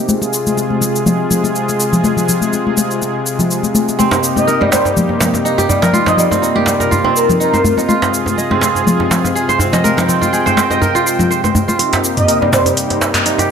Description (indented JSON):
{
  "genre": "afro house",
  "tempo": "123 BPM",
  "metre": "4/4",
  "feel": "swing 55% on 16ths",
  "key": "C minor",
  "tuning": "A4 = 440 Hz",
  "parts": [
    { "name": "warm analog pad", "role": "sustained chords", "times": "0.0-13.5 s", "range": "C3 to G5", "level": "-18 LUFS", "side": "equal", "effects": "chorus, tremolo" },
    { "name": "deep house drum kit", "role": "drums", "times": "0.1-13.5 s", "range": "cabasa, handclaps, hi-hat, toms", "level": "-20 LUFS", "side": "left 1 dB", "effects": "studio reverb" },
    { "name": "congas", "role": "percussion", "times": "0.1-11.8 s", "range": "none", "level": "-17 LUFS", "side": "left 3 dB", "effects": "none" },
    { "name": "kora", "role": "arpeggios", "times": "4.0-13.5 s", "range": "G3 to Eb5", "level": "-16 LUFS", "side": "right 2 dB", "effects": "low-pass filter, ping-pong delay" },
    { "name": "djembe", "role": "percussion", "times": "4.1-13.5 s", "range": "none", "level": "-19 LUFS", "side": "right 2 dB", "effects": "none" },
    { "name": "expressive synth lead", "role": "melody", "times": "4.4-7.8, 12.2-12.6 s", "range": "Bb4 to Eb5", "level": "-18 LUFS", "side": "equal", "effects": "ensemble chorus, ping-pong delay" }
  ],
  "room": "light reverb",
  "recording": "none",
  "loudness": "-12 LUFS",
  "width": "side -7 dB against mid",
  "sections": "0.0-11.8 A section; 11.8-13.5 B section",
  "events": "build-up 11.8-13.5",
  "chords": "0.1 Fm; 4.0 Cm7; 7.9 Fm; 11.8 Cm7",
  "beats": "| 0.09 0.57 1.06 1.55 | 2.04 2.52 3.01 3.50 | 3.99 4.47 4.96 5.45 | 5.94 6.43 6.91 7.40 | 7.89 8.38 8.87 9.35 | 9.84 10.33 10.82 11.30 | 11.79 12.28 12.77 13.26"
}